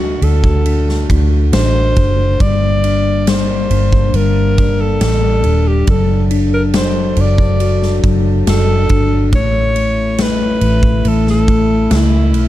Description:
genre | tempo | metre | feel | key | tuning
pop ballad | 69 BPM | 4/4 | straight | unclear | A4 = 441 Hz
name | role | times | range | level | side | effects
clear alto saxophone | melody | 0.0-12.5 s | E4 to D5 | -19 LUFS | equal | none
bell-like tine electric piano | accompaniment | 0.0-12.5 s | F#3 to F#4 | -18 LUFS | left 4 dB | phaser
warm French horn section | sustained chords | 0.0-12.5 s | D3 to A4 | -25 LUFS | right 1 dB | stereo widening
vintage muted fingered electric bass | bass | 0.0-12.5 s | Eb1 to D2 | -14 LUFS | right 1 dB | none
huge arena drum kit | drums | 0.2-12.5 s | kick drum, ride cymbal, snare drum | -18 LUFS | equal | none
room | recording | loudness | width
small room ambience | dark, warm production | -11 LUFS | side -14 dB against mid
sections
0.0-12.5 A section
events
none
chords
0.0 D; 2.4 Gm; 5.9 D/F#; 9.3 A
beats
0.66 1.53 | 2.40 3.28 4.15 5.02 | 5.88 6.74 7.60 8.46 | 9.32 10.18 11.04 11.91

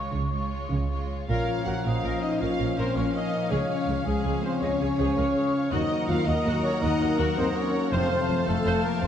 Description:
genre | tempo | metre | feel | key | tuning
cinematic, heroic adventure film score | 108 BPM (dotted quarters) | 12/8 | straight | Bb minor | A4 = 441 Hz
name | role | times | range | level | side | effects
warm symphonic violin section | melody | 0.0-9.1 s | Ab4 to Gb5 | -36 LUFS | left 2 dB | none
hollow large flute ensemble | second line | 0.0-9.1 s | F5 to Db6 | -39 LUFS | left 1 dB | none
warm symphonic violin section | second line | 0.0-9.1 s | F4 to Bb5 | -38 LUFS | equal | none
clear symphonic viola section | accompaniment | 0.0-9.1 s | Ab3 to C5 | -34 LUFS | right 1 dB | none
concert harp | arpeggios | 0.0-9.1 s | Bb2 to F5 | -35 LUFS | left 6 dB | none
rich symphonic double bass section | bass | 0.0-9.1 s | F1 to Eb2 | -31 LUFS | right 2 dB | none
warm symphonic cello section | bass | 0.0-9.1 s | Db2 to Db3 | -32 LUFS | right 2 dB | none
clear clarinet | second line | 1.3-9.1 s | Ab4 to F5 | -39 LUFS | left 2 dB | none
mellow cor anglais | second line | 1.3-9.1 s | Db5 to Gb5 | -39 LUFS | right 2 dB | none
mellow French horn section | sustained chords | 1.3-9.1 s | Ab3 to Gb4 | -28 LUFS | left 3 dB | none
warm trombone section | sustained chords | 1.3-9.1 s | F3 to Db4 | -34 LUFS | right 1 dB | none
mellow trumpet | stabs | 1.3-9.1 s | Ab4 to Gb5 | -33 LUFS | right 1 dB | none
timpani | percussion | 7.9-8.4 s | F2 | -34 LUFS | left 2 dB | none
room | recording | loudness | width
wet scoring stage reverb, RT60 1.6 s | dark, warm production | -23 LUFS | side -9 dB against mid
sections
0.0-1.3 A section; 1.3-9.1 B section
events
none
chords
0.0 Db; 1.3 Bbm; 3.5 Db; 5.7 Ebm; 7.9 F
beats
0.15 0.72 | 1.29 1.85 2.40 2.96 | 3.52 4.07 4.63 5.18 | 5.73 6.28 6.83 7.38 | 7.93 8.48 9.03

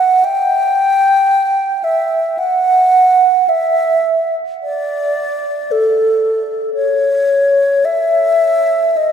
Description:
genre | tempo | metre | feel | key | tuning
classical, free, expressive piece for unaccompanied alto flute | free time | none | none | E minor | A4 = 440 Hz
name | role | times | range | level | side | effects
wooden-headed alto flute | solo | 0.0-9.1 s | A4 to G5 | -12 LUFS | equal | none
room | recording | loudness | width
wet cathedral reverb, RT60 4.8 s | recorded in a church or concert hall | -12 LUFS | side -8 dB against mid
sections
0.0-9.1 A section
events
none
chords
none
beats
free time

